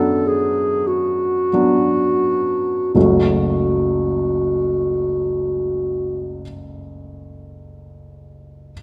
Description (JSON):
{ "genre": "classical, romantic duo for clarinet and grand piano", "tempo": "26-36 BPM (dotted quarters)", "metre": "6/8", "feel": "rubato", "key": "F# minor", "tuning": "A4 = 439 Hz", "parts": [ { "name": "mellow clarinet", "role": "melody", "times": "0.0-6.4 s", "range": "F#4 to A4", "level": "-21 LUFS", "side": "equal", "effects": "none" }, { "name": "warm grand piano", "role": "accompaniment", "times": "0.0-8.7 s", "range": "F#1 to F#4", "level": "-23 LUFS", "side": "equal", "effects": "none" } ], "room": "wet recital hall reverb, RT60 1.5 s", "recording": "none", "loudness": "-19 LUFS", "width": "mono", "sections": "0.0-2.9 A section; 2.9-6.6 B section", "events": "slowing down 0.0-2.9", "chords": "0.0 Bm/F#; 2.9 F#m", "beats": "0.86 | 2.95 4.78" }